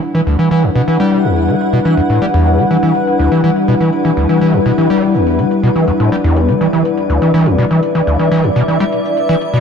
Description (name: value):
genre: acid house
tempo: 123 BPM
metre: 4/4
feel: straight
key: E minor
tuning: A4 = 437 Hz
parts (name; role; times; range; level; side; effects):
- warm analog pad; sustained chords; 0.0-9.6 s; G3 to D5; -17 LUFS; left 2 dB; chorus
- electronic hi-hat and shaker; drums; 0.0-9.6 s; none; -40 LUFS; right 4 dB; none
- granular cloud pad; texture; 0.0-9.6 s; E4 to F#5; -18 LUFS; left 2 dB; built-in reverb
- overdriven acid bass; riff; 0.1-9.6 s; D2 to G3; -13 LUFS; equal; distortion, lush chorus, tape echo
room: moderate plate reverb, RT60 2.7 s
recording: none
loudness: -10 LUFS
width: side -6 dB against mid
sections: 0.0-9.6 A section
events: filter sweep on analog synth pad 0.0-9.6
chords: 0.0 Em7